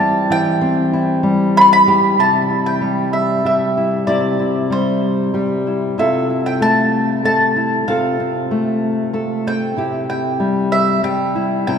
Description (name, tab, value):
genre	acoustic folk duo or small band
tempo	95 BPM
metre	3/4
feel	straight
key	C major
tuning	A4 = 440 Hz
part	mandolin	melody	0.0-11.8 s	C5 to C6	-16 LUFS	right 1 dB	none
part	nylon-string guitar	accompaniment	0.0-11.8 s	C3 to A4	-17 LUFS	left 2 dB	none
room	wet cathedral reverb, RT60 4.7 s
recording	recorded in a church or concert hall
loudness	-14 LUFS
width	side -7 dB against mid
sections	0.0-2.2 A section; 2.2-11.8 B section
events	none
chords	0.0 C/E; 2.2 C; 6.0 Fmaj7/C; 9.8 C